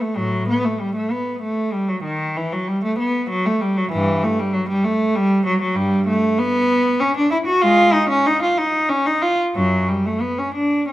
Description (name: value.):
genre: classical, baroque-style suite movement for unaccompanied cello.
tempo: 64 BPM (dotted quarters).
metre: 6/8.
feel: rubato.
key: unclear.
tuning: A4 = 438 Hz.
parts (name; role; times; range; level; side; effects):
rich cello; solo; 0.0-10.9 s; F#2 to F#4; -17 LUFS; equal; none.
room: moderate recital hall reverb, RT60 1.6 s.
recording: none.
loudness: -17 LUFS.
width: side -15 dB against mid.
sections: 0.0-10.9 A section.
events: none.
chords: none.